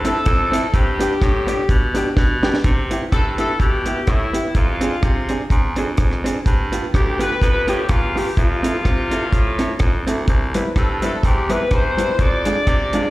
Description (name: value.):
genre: ska.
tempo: 126 BPM.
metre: 4/4.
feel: swing 56% on 8ths.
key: C major.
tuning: A4 = 439 Hz.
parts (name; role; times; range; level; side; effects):
mellow horn section; melody; 0.0-13.1 s; E4 to D5; -22 LUFS; left 2 dB; slapback echo, plate reverb.
vintage hollow-body jazz guitar; accompaniment; 0.0-13.1 s; G3 to A4; -24 LUFS; right 1 dB; slapback echo, plate reverb.
bright upright piano; stabs; 0.0-2.6, 10.5-13.1 s; B3 to B4; -27 LUFS; left 3 dB; plate reverb, slapback echo.
clear baritone saxophone; bass; 0.0-13.1 s; C2 to C3; -24 LUFS; equal; none.
deep reggae drum kit; drums; 0.0-13.0 s; hi-hat, kick drum, rim click, snare drum; -18 LUFS; equal; none.
room: light reverb.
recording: live gig heard through the venue's PA, recital hall reverb.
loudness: -16 LUFS.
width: side -18 dB against mid.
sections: 0.0-2.6 A section; 2.6-13.1 B section.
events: drum fill 2.2-2.6.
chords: 0.0 Am; 0.7 G; 2.6 Cmaj7; 4.6 Fm6; 6.5 G7; 8.4 Fmaj7; 10.3 Cmaj7; 12.2 Fm6.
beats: 0.26 | 0.74 1.22 1.69 2.17 | 2.65 3.12 3.60 4.08 | 4.55 5.03 5.51 5.99 | 6.46 6.94 7.42 7.90 | 8.37 8.85 9.33 9.80 | 10.28 10.76 11.24 11.71 | 12.19 12.67.